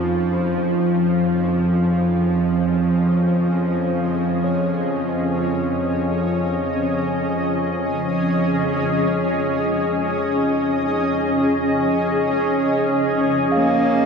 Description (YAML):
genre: dark ambient drone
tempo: free time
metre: none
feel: none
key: unclear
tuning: A4 = 439 Hz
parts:
  - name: granular cloud pad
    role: sustained chords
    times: 0.0-14.1 s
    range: Db4 to Eb5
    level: -21 LUFS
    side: equal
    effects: built-in reverb
  - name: dark detuned synth bell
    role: arpeggios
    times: 0.0-13.5 s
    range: Eb4 to F4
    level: -33 LUFS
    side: left 2 dB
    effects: none
  - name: bowed-like drone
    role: drone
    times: 0.0-14.1 s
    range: F2 to Ab3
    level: -21 LUFS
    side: equal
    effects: built-in reverb
  - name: bronze singing bowl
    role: texture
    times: 4.4-14.1 s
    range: Db5 to F5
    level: -31 LUFS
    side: left 1 dB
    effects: none
  - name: warm cello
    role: melody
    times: 13.5-14.1 s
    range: Bb3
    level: -22 LUFS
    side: right 2 dB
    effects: none
room: wet huge ambient reverb, RT60 8.5 s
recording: dark, warm production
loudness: -18 LUFS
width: side -6 dB against mid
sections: 0.0-13.5 A section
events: fade-in on ambient pad 0.0-13.5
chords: 0.0 Db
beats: free time